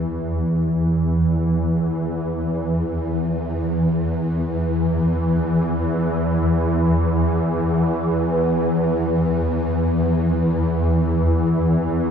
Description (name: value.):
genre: ambient.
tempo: free time.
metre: none.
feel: none.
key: unclear.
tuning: A4 = 440 Hz.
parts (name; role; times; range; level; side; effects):
swarming drone; solo; 0.0-12.1 s; E2 to E3; -18 LUFS; equal; built-in reverb, tape echo.
room: wet huge ambient reverb, RT60 7.7 s.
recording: dreamy mix soaked in reverb.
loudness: -18 LUFS.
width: side -7 dB against mid.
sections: 0.0-12.1 A section.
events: none.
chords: none.